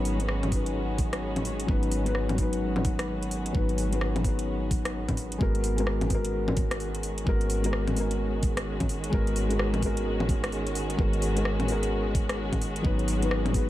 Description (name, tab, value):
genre	future garage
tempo	129 BPM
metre	4/4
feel	swing 62% on 16ths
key	G# minor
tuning	A4 = 439 Hz
part	felt-muted upright piano	accompaniment	0.0-13.7 s	F#3 to B4	-30 LUFS	left 2 dB	sidechain pumping, analog delay
part	dark studio string section	sustained chords	0.0-13.7 s	D#3 to F#4	-34 LUFS	equal	sidechain pumping
part	soft 808-style bass	bass	0.0-13.7 s	G#1	-30 LUFS	equal	sidechain pumping
part	drifting glass-harmonics texture	texture	0.0-5.4, 13.4-13.7 s	B3 to D#5	-44 LUFS	right 1 dB	chorus, built-in reverb
part	garage drum kit	drums	0.1-13.7 s	bongos, hi-hat, rim click	-32 LUFS	left 1 dB	none
part	electronic kick drum	drums	0.5-13.7 s	none	-28 LUFS	equal	none
room	digital ambience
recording	none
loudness	-25 LUFS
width	side -14 dB against mid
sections	0.0-5.4 A section; 5.4-13.7 B section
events	none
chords	0.0 B/G#; 5.4 G#m9; 12.8 B/G#